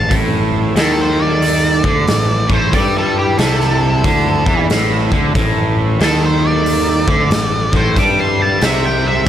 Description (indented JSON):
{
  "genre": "blues rock power trio and southern rock",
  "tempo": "92 BPM",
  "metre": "4/4",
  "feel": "swing 64% on 8ths",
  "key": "A minor",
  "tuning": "A4 = 439 Hz",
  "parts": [
    { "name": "octave-fuzz lead guitar", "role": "melody", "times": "0.0-9.3 s", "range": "G4 to D6", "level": "-19 LUFS", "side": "equal", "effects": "wah, distortion" },
    { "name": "lead guitar through a small cranked amp", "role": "second line", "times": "0.0-9.3 s", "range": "E4 to A5", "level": "-25 LUFS", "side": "right 4 dB", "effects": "overdrive" },
    { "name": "fuzz picked electric bass", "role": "bass", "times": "0.0-9.3 s", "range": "A1 to G2", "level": "-18 LUFS", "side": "left 1 dB", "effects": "overdrive" },
    { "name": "overdriven tonewheel organ", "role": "sustained chords", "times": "0.1-9.3 s", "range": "C4 to E5", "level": "-29 LUFS", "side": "right 4 dB", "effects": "none" },
    { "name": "crunchy overdriven guitar", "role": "riff", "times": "0.1-9.3 s", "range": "A2 to G3", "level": "-17 LUFS", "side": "equal", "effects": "none" },
    { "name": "raw garage drum kit", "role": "drums", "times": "0.1-9.3 s", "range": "hi-hat, kick drum, snare drum", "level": "-18 LUFS", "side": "equal", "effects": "none" }
  ],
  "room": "light reverb",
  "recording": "none",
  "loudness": "-12 LUFS",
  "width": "side -10 dB against mid",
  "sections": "0.0-9.3 A section",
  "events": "none",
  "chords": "0.0 Am"
}